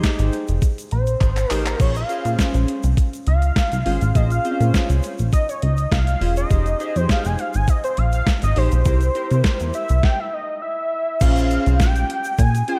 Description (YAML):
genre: early-eighties boogie funk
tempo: 102 BPM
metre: 4/4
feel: straight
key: unclear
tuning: A4 = 437 Hz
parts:
  - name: chorused polysynth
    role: accompaniment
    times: 0.0-12.8 s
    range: C4 to C5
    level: -30 LUFS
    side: equal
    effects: none
  - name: crisp 8-bit digital drum machine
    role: drums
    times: 0.0-12.8 s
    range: crash cymbal, handclaps, hi-hat, kick drum, snare drum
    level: -23 LUFS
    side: equal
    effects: overdrive
  - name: egg shaker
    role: percussion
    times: 0.0-12.7 s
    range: none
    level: -45 LUFS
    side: equal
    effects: none
  - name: plucky analog bass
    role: bass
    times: 0.2-12.6 s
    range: E1 to C3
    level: -21 LUFS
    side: equal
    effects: none
  - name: fat analog lead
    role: melody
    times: 0.9-12.8 s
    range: C5 to Ab5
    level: -27 LUFS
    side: equal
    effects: chorus, analog delay
room: light reverb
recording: none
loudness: -20 LUFS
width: mono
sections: 0.0-11.2 A section; 11.2-12.8 B section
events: analog synth lead solo 0.0-11.2; drum fill 1.2-1.8; stop 10.0-11.2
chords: 0.0 Fm9 (rootless); 1.8 Bbm7; 6.5 Fm9; 8.9 C7; 11.2 Bbm7